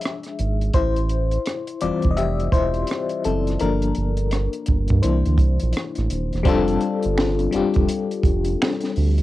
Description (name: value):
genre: R&B, neo-soul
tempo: 84 BPM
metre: 4/4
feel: swing 63% on 16ths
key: F major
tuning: A4 = 439 Hz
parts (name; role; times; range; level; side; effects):
- FM electric piano with tremolo; accompaniment; 0.0-9.2 s; E3 to E5; -23 LUFS; left 5 dB; cassette tape, plate reverb
- compact cocktail drum kit; drums; 0.0-9.2 s; finger snaps, hi-hat, kick drum, rim click, snare drum; -23 LUFS; right 1 dB; none
- round analog bass; bass; 0.4-9.2 s; Eb1 to G2; -22 LUFS; right 1 dB; none
room: light reverb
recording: home recording on cassette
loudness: -19 LUFS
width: side -16 dB against mid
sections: 0.0-6.5 A section; 6.5-9.2 B section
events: FM electric piano solo 0.0-6.5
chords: 0.0 E7b9; 0.7 Am7; 3.6 Gm9; 5.0 C9; 6.5 F6